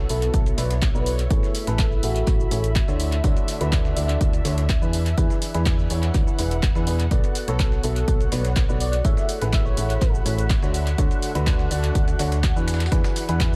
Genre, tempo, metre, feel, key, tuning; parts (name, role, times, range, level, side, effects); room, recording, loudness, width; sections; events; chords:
piano house; 124 BPM; 4/4; straight; A4 = 440 Hz
analog string pad; sustained chords; 0.0-13.6 s; E4 to F#5; -38 LUFS; equal; ensemble chorus, sidechain pumping
warm upright piano; riff; 0.0-13.6 s; B2 to E5; -32 LUFS; equal; sidechain pumping, low-pass filter, tape echo
solid FM bass; bass; 0.0-13.6 s; E1 to E2; -26 LUFS; equal; sidechain pumping
muted chamber string section; texture; 0.0-13.6 s; A3 to B5; -38 LUFS; equal; sidechain pumping
airy dreamy lead; melody; 0.1-2.5, 7.5-10.1 s; F#4 to E5; -34 LUFS; equal; chorus, tape echo
dusty soul sampler-style drum kit; drums; 0.1-13.5 s; hi-hat, snare drum, tambourine; -42 LUFS; equal
punchy analog drum machine; drums; 0.1-13.6 s; handclaps, hi-hat, shaker; -34 LUFS; equal; tape echo
electronic kick drum; drums; 0.3-13.5 s; -24 LUFS; equal
little or no reverb; echo-heavy mix; -22 LUFS; mono
0.0-13.6 A section
0.0 Bm7; 1.3 Amaj7; 3.0 Dmaj7; 4.9 E7; 7.1 Bm7; 9.0 Amaj7; 10.7 Dmaj7; 12.7 E7